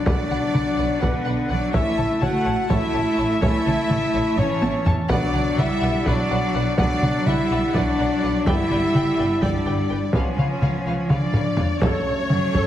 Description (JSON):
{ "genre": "cinematic, epic orchestral film score", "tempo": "250 BPM (eighths)", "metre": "7/8", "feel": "straight", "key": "B minor", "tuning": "A4 = 440 Hz", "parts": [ { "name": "rich symphonic violin section", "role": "second line", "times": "0.0-12.7 s", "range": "B4 to F#5", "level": "-32 LUFS", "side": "left 1 dB", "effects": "none" }, { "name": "mellow French horn section", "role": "sustained chords", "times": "0.0-12.7 s", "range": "B3 to F#4", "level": "-24 LUFS", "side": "left 2 dB", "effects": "none" }, { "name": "warm woodwind section", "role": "sustained chords", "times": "0.0-12.7 s", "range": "A3 to A5", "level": "-34 LUFS", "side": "equal", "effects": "none" }, { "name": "bright trumpet section", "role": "stabs", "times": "0.0-12.7 s", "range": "C#4 to F#5", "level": "-31 LUFS", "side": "equal", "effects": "none" }, { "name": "rich symphonic cello section", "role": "bass", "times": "0.0-12.7 s", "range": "D3 to A3", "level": "-27 LUFS", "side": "right 2 dB", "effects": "none" }, { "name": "warm symphonic violin section", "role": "melody", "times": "0.1-12.7 s", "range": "C#5 to A5", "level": "-32 LUFS", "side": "left 3 dB", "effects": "none" }, { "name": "clear symphonic viola section", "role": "accompaniment", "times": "0.1-12.7 s", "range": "F#4 to D5", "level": "-35 LUFS", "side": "equal", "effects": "none" }, { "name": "clear trombone section", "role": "sustained chords", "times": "0.1-12.7 s", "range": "E3 to C#4", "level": "-38 LUFS", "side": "right 3 dB", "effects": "none" }, { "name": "rich symphonic double bass section", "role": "bass", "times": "0.1-12.6 s", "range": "G1 to F#2", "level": "-28 LUFS", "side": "right 2 dB", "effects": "none" }, { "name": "taiko ensemble", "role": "drums", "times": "0.1-12.7 s", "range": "none", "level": "-23 LUFS", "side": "equal", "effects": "none" }, { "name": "silver concert flute", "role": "second line", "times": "11.1-12.7 s", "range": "C#5 to D5", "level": "-32 LUFS", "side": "equal", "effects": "none" } ], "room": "wet scoring stage reverb, RT60 1.9 s", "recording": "heavily compressed radio sound, multiband compression", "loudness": "-18 LUFS", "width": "side -11 dB against mid", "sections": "0.0-11.8 A section", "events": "drum fill 4.4-5.1, 11.1-11.8", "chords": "0.0 Bm; 1.7 A; 5.1 Bm; 8.5 G; 10.1 C#7; 11.8 F#m" }